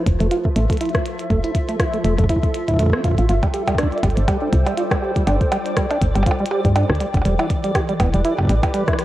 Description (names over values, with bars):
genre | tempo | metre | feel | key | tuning
IDM | 121 BPM | 4/4 | swing 56% on 16ths | unclear | A4 = 442 Hz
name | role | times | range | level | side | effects
hollow soft pad | sustained chords | 0.0-9.0 s | E3 to B5 | -26 LUFS | equal | ensemble chorus
deep acid bass | arpeggios | 0.0-9.0 s | G3 to G4 | -23 LUFS | right 2 dB | wide subtle chorus, cassette tape, digital delay
woody FM bass | bass | 0.1-8.6 s | E1 to G2 | -18 LUFS | equal | tube saturation
electronic kick drum | drums | 0.1-9.0 s | none | -20 LUFS | equal | small room ambience
glitchy drum kit | drums | 0.1-9.0 s | hi-hat, percussion blips, rim click | -26 LUFS | equal | small room ambience, digital delay
flickering grainy texture | texture | 3.7-9.0 s | D5 | -31 LUFS | right 2 dB | built-in reverb, sidechain pumping
room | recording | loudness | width
light reverb, digital ambience | worn, warbling old tape, cassette tape, warbly pitch drift | -16 LUFS | side -15 dB against mid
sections
0.0-9.0 A section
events
none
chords
0.0 Fmaj7; 3.3 G7sus4; 7.3 Em